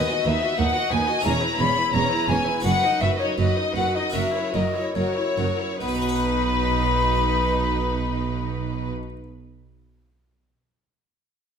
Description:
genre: classical, baroque-style concerto movement with solo episodes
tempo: 68-92 BPM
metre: 4/4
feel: straight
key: B major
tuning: A4 = 440 Hz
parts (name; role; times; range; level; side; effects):
- rich chamber violin section; melody; 0.0-8.9 s; B4 to B5; -28 LUFS; left 5 dB; none
- rich chamber violin section; second line; 0.0-8.9 s; A#4 to D#5; -30 LUFS; left 1 dB; none
- harpsichord; accompaniment; 0.0-9.2 s; D#2 to F#5; -32 LUFS; equal; none
- rich chamber viola section; accompaniment; 0.0-8.9 s; C#4 to F#4; -31 LUFS; right 1 dB; none
- mellow silver concert flute; melody; 0.3-8.9 s; C#5 to B5; -26 LUFS; left 3 dB; none
- rich chamber cello section; bass; 0.3-8.9 s; D#2 to B2; -28 LUFS; right 4 dB; none
- rich chamber double bass section; bass; 0.3-8.9 s; E1 to D#2; -28 LUFS; right 3 dB; none
room: moderate recital hall reverb, RT60 1.4 s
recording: minimal, uncompressed stereo recording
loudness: -20 LUFS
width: side -7 dB against mid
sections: 0.0-5.8 A section; 5.8-9.3 B section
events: slowing down 0.0-5.8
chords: 0.0 B/D#; 1.2 C#m7/E; 2.6 B/F#; 4.1 F#7; 5.8 B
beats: 0.58 1.25 1.94 | 2.64 3.38 4.14 4.95 | 5.81 6.68 7.55 8.43

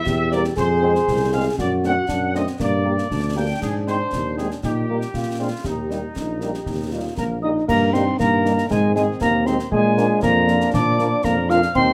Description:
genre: military-style march for wind band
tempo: 118 BPM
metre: 2/4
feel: straight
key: Eb major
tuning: A4 = 438 Hz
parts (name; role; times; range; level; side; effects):
- dark trumpet section; melody; 0.0-11.9 s; Eb4 to G5; -31 LUFS; equal; none
- warm euphonium; second line; 0.0-11.9 s; Ab3 to Ab4; -24 LUFS; equal; none
- warm tuba; bass; 0.1-11.9 s; Bb1 to Bb2; -26 LUFS; equal; none
- concert snare drum, concert bass drum and clash cymbals; drums; 0.1-11.9 s; none; -32 LUFS; equal; none
- mellow French horn section; accompaniment; 0.3-11.6 s; F3 to G4; -30 LUFS; equal; none
- wooden piccolo; second line; 7.2-11.9 s; Ab5 to F6; -26 LUFS; equal; none
- warm trombone section; sustained chords; 7.7-11.9 s; Eb3 to Eb4; -31 LUFS; equal; none
room: light reverb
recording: close, detailed microphones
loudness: -20 LUFS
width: mono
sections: 0.0-7.7 A section; 7.7-11.9 B section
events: none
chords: 0.0 C7/E; 0.6 Fm; 1.6 D7/F#; 2.6 Gm; 3.6 Ab; 4.6 Eb/Bb; 5.1 Bb13; 5.7 Eb; 7.7 Eb/G; 8.7 Ab; 9.7 Bb7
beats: 0.06 | 0.57 1.08 | 1.59 2.09 | 2.60 3.11 | 3.62 4.13 | 4.63 5.14 | 5.65 6.16 | 6.67 7.17 | 7.68 8.19 | 8.70 9.21 | 9.72 10.23 | 10.73 11.24 | 11.75

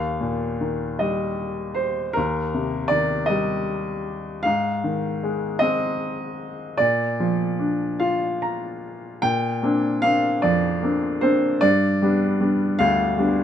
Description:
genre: classical, lyrical solo piano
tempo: 51 BPM (dotted quarters)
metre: 6/8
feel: rubato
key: Bb major from 9.2 s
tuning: A4 = 440 Hz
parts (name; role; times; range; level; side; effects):
- clear baby grand piano; solo; 0.0-13.4 s; D2 to Bb5; -20 LUFS; equal; none
room: light reverb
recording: close, detailed microphones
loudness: -20 LUFS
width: side -9 dB against mid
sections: 0.0-9.2 A section; 9.2-13.4 B section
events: grand piano fill 8.0-9.2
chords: 0.0 Eb; 2.2 Cm/Eb; 4.5 Ab; 6.8 Bb; 9.2 Bbadd9; 11.6 G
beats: 1.00 | 2.16 3.31 | 4.46 5.62 | 6.80 8.01 | 9.23 10.43 | 11.63 12.81

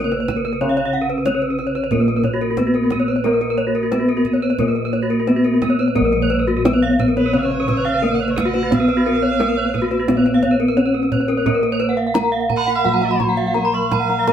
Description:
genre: Balinese gamelan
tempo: 83-92 BPM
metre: 4/4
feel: straight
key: Bb pelog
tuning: A4 = 440 Hz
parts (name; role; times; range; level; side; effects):
- gamelan-type bronze metallophone; melody; 0.0-14.3 s; Bb3 to Bb4; -20 LUFS; equal; none
- gamelan-type bronze metallophone; accompaniment; 0.0-14.3 s; Db3-30c to Cb4+20c; -27 LUFS; right 4 dB; none
- gamelan-type bronze metallophone; arpeggios; 0.0-14.3 s; Gb4-20c to Cb6+20c; -22 LUFS; left 2 dB; none
- gamelan-type bronze metallophone; arpeggios; 0.0-14.3 s; Gb4-20c to Db6-30c; -25 LUFS; right 4 dB; none
- gamelan-type bossed gongs; bass; 0.0-14.3 s; Bb1 to Cb5+20c; -24 LUFS; left 1 dB; none
- kendang; percussion; 0.1-14.3 s; none; -25 LUFS; right 3 dB; none
- rich erhu; second line; 7.2-14.3 s; Cb5 to Gb5; -24 LUFS; right 5 dB; none
room: moderate small room reverb, RT60 0.5 s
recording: band playing live in one room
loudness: -15 LUFS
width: side -9 dB against mid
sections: 0.0-6.0 A section; 6.0-14.3 B section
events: none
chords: none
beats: | 0.61 1.26 1.92 2.58 | 3.25 3.92 4.60 5.28 | 5.96 6.65 7.34 8.02 | 8.71 9.40 10.08 10.77 | 11.46 12.15 12.85 13.56 | 14.28

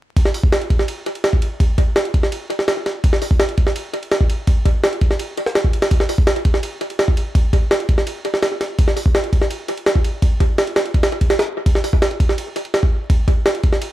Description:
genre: drum and bass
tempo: 167 BPM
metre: 4/4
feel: straight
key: none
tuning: none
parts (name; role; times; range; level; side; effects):
- jungle sampler-style drum kit; drums; 0.2-13.9 s; hi-hat, kick drum, ride cymbal, snare drum; -15 LUFS; equal; small room ambience, analog delay
room: light reverb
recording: echo-heavy mix, vinyl crackle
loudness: -15 LUFS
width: side -15 dB against mid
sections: 0.2-11.7 A section; 11.7-13.9 B section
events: build-up 11.7-13.9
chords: none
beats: | 0.17 0.53 0.89 1.24 | 1.60 1.96 2.32 2.68 | 3.04 3.40 3.76 4.12 | 4.48 4.84 5.20 5.56 | 5.92 6.27 6.63 6.99 | 7.35 7.71 8.07 8.43 | 8.79 9.15 9.51 9.87 | 10.23 10.59 10.95 11.30 | 11.66 12.02 12.38 12.74 | 13.10 13.46 13.82

